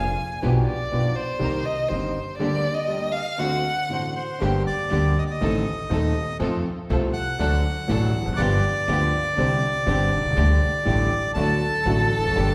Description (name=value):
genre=tango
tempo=121 BPM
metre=4/4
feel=rubato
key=G harmonic minor from 4.4 s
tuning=A4 = 440 Hz
part: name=warm violin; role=second line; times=0.0-4.2, 11.3-12.5 s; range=A4 to Ab5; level=-29 LUFS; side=equal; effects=none
part: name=clear concert grand piano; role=accompaniment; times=0.0-12.5 s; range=Eb1 to A4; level=-28 LUFS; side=equal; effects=none
part: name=muted studio string section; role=stabs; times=0.0-12.5 s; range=D3 to Bb4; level=-34 LUFS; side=equal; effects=none
part: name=upright bass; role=bass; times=0.0-12.5 s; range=E1 to F2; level=-28 LUFS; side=equal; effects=none
part: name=bandoneon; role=melody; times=3.9-12.5 s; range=C5 to A5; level=-28 LUFS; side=equal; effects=none
room=wet recital hall reverb, RT60 1.6 s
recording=recorded in a church or concert hall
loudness=-23 LUFS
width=mono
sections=0.0-4.4 A section; 4.4-12.5 B section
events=violin solo 0.0-4.4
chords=0.4 G7/B; 1.4 Cm7; 2.4 Gm/D; 3.4 D7; 4.4 Gm; 5.4 Adim; 6.4 F; 7.4 D; 8.4 G7; 9.4 Csus2; 10.4 Dsus4; 11.4 D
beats=| 0.43 0.92 1.42 1.92 | 2.41 2.91 3.41 3.92 | 4.42 4.92 5.42 5.92 | 6.41 6.91 7.40 7.89 | 8.39 8.88 9.38 9.87 | 10.37 10.87 11.37 11.87 | 12.36